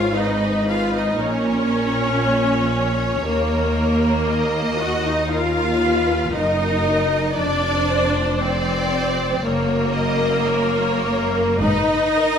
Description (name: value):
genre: classical, slow romantic movement for string orchestra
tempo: 58 BPM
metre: 4/4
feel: rubato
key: unclear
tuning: A4 = 440 Hz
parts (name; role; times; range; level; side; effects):
- rich symphonic violin section; melody; 0.0-12.4 s; A#4 to D#5; -26 LUFS; left 2 dB; none
- rich symphonic violin section; second line; 0.0-12.4 s; A#4 to F#5; -25 LUFS; right 1 dB; none
- rich symphonic viola section; accompaniment; 0.0-12.4 s; A#3 to F#4; -21 LUFS; left 1 dB; none
- rich symphonic cello section; bass; 0.0-12.4 s; D#2 to A#2; -25 LUFS; right 2 dB; none
- rich symphonic double bass section; bass; 0.0-12.4 s; F1 to D#2; -26 LUFS; right 1 dB; none
room: wet stone room reverb, RT60 1.3 s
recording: none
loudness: -17 LUFS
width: side -7 dB against mid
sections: 0.0-12.4 A section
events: none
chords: 0.0 Fdim/Ab; 1.2 A#m; 3.2 D#m; 7.3 Dm7/F; 9.4 F#6; 11.6 G#m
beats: 0.16 1.21 2.23 | 3.25 4.29 5.31 6.33 | 7.35 8.41 9.44 10.46 | 11.60